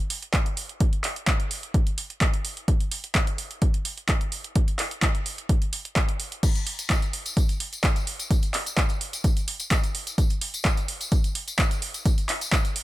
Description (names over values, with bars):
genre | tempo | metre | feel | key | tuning
house | 128 BPM | 4/4 | straight | none | none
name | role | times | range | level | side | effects
punchy analog drum machine | drums | 0.1-12.8 s | crash cymbal, handclaps, hi-hat | -28 LUFS | right 1 dB | none
electronic kick drum | drums | 0.3-12.6 s | none | -23 LUFS | equal | none
tambourine | percussion | 6.4-12.7 s | none | -34 LUFS | left 2 dB | none
room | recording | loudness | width
digital ambience | none | -23 LUFS | side -16 dB against mid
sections
0.0-12.8 A section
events
none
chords
none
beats
0.34 | 0.81 1.27 1.74 2.21 | 2.68 3.15 3.62 4.09 | 4.55 5.02 5.49 5.96 | 6.43 6.90 7.37 7.84 | 8.30 8.77 9.24 9.71 | 10.18 10.65 11.12 11.59 | 12.05 12.52